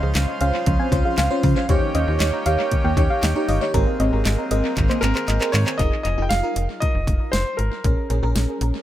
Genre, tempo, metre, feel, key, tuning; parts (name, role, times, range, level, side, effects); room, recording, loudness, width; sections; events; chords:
synth-pop; 117 BPM; 4/4; straight; F minor; A4 = 440 Hz
clear baby grand piano; melody; 0.0-0.1, 5.0-8.3 s; Ab4 to G5; -27 LUFS; equal; tape echo
FM electric piano with soft pad layer; accompaniment; 0.0-8.8 s; C4 to Db5; -25 LUFS; equal; chorus, phaser, tape echo
accordion; sustained chords; 0.0-5.8 s; Db3 to C5; -29 LUFS; right 1 dB
soft round pluck; arpeggios; 0.0-5.8 s; Eb3 to Ab6; -28 LUFS; right 2 dB; chorus, tape echo
slap-like FM bass; bass; 0.0-8.7 s; F1 to Db3; -21 LUFS; equal
pop drum kit; drums; 0.2-8.7 s; handclaps, hi-hat, kick drum, snare drum; -23 LUFS; equal; tape echo
soft round pluck; second line; 0.4-5.6 s; C5 to Ab5; -28 LUFS; left 1 dB; chorus, tape echo
light reverb; echo-heavy mix; -18 LUFS; side -12 dB against mid
0.0-5.8 A section; 5.8-8.8 B section
drum fill 4.8-5.8
0.0 Dbmaj7; 1.7 Eb7; 3.7 Abadd9; 5.8 Fm7; 7.8 Bbm7